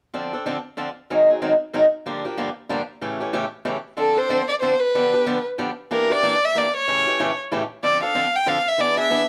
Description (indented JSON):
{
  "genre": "jazz",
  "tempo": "187 BPM",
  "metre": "3/4",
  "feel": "swing 60% on 8ths",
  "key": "D minor",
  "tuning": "A4 = 439 Hz",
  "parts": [
    { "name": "picked swing-style acoustic guitar", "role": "accompaniment", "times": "0.1-9.2 s", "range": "G2 to A4", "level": "-24 LUFS", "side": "equal", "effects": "none" },
    { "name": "rich violin", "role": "melody", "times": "4.0-9.3 s", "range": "A4 to G5", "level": "-21 LUFS", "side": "equal", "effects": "none" }
  ],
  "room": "moderate studio reverb, RT60 0.6 s",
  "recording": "none",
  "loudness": "-21 LUFS",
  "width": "mono",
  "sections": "0.1-4.0 A section; 4.0-9.3 B section",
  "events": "none",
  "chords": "0.1 Dm7; 1.1 G#7; 2.1 Gm7; 3.0 A7; 4.0 Dm7; 4.9 G7/D; 5.9 Em7b5; 6.9 A7; 7.8 Dm7"
}